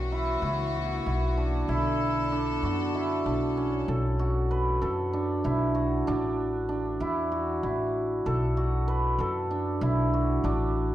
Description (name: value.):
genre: contemporary instrumental, chamber music in an uneven meter.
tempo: 192 BPM (eighths).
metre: 7/8.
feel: straight.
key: B minor.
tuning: A4 = 440 Hz.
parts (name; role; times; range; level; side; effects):
rich chamber string section; sustained chords; 0.0-3.9 s; D3 to A4; -35 LUFS; left 5 dB; none.
cimbalom; arpeggios; 0.0-10.9 s; C#4 to B4; -27 LUFS; right 1 dB; none.
upright bass; bass; 0.0-10.9 s; A1 to F#2; -29 LUFS; equal; none.
room: moderate recital hall reverb, RT60 1.5 s.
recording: dark, warm production.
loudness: -25 LUFS.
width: side -13 dB against mid.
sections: 0.0-3.9 A section; 3.9-10.9 B section.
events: none.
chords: 0.0 F#7/B; 1.7 Bm7; 6.1 Asus4; 8.3 Bm7; 10.4 Asus4.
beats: 0.11 0.42 0.74 1.05 1.36 | 1.68 1.99 2.31 2.62 2.93 3.25 3.56 | 3.87 4.18 4.50 4.81 5.12 5.44 5.75 | 6.06 6.38 6.69 7.00 7.31 7.63 7.94 | 8.25 8.56 8.88 9.19 9.50 9.82 10.13 | 10.44 10.76.